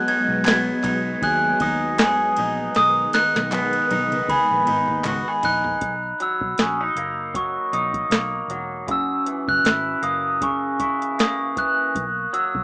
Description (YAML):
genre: indie pop, bedroom pop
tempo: 78 BPM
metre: 4/4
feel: swing 55% on 16ths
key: B major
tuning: A4 = 440 Hz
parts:
  - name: glockenspiel with rubber mallets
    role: melody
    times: 0.0-12.5 s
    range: B5 to G#6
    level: -21 LUFS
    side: equal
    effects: lush chorus
  - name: electric guitar through a small old amp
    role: accompaniment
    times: 0.0-12.6 s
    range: F#2 to G#4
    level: -25 LUFS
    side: equal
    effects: wide subtle chorus, warbly pitch drift
  - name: string machine, violins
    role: sustained chords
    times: 0.0-5.8 s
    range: D#3 to B3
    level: -29 LUFS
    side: equal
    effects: ensemble chorus
  - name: soft vintage rhythm box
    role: drums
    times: 0.1-12.6 s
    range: hi-hat, kick drum, ride cymbal, snare drum, toms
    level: -24 LUFS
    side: equal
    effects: none
  - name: vintage muted fingered electric bass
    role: bass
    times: 0.3-12.6 s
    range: E1 to F#2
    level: -32 LUFS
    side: equal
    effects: none
  - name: group handclap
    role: percussion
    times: 0.5-5.2 s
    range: none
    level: -30 LUFS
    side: equal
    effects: none
room: moderate studio reverb, RT60 0.5 s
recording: rough home demo mix, small speaker sound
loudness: -18 LUFS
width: side -26 dB against mid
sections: 0.0-5.8 A section; 5.8-12.6 B section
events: drum fill 2.8-5.8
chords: 0.0 G#m7/B; 2.8 B6; 5.8 Bmaj7; 8.9 F#7; 11.9 Bmaj7(no3)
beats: 0.46 1.22 1.99 | 2.75 3.52 4.28 5.05 | 5.81 6.58 7.34 8.11 | 8.88 9.65 10.41 11.18 | 11.95